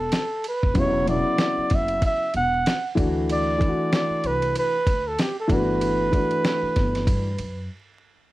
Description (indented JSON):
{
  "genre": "hip hop, jazz-hop",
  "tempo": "95 BPM",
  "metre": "4/4",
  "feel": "swing 58% on 16ths",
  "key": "unclear",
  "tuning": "A4 = 439 Hz",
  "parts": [
    { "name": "breathy flugelhorn", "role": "melody", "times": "0.0-7.7 s", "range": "G4 to F#5", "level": "-24 LUFS", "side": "right 2 dB", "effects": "none" },
    { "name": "upright bass", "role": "bass", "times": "0.0-7.7 s", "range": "E1 to G2", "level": "-29 LUFS", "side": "equal", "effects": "none" },
    { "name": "dusty soul sampler-style drum kit", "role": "drums", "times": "0.1-7.6 s", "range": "hi-hat, kick drum, ride cymbal, snare drum", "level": "-24 LUFS", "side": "equal", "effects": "none" },
    { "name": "dark upright piano", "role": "accompaniment", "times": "0.7-7.3 s", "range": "B2 to F#4", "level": "-25 LUFS", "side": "left 1 dB", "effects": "none" }
  ],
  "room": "moderate small room ambience, RT60 0.5 s",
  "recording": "vinyl crackle",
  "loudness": "-20 LUFS",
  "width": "side -17 dB against mid",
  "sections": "0.0-8.3 A section",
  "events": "break 7.7-8.3",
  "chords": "0.0 E5; 0.8 Dmaj13/E; 3.0 D9; 5.5 G6"
}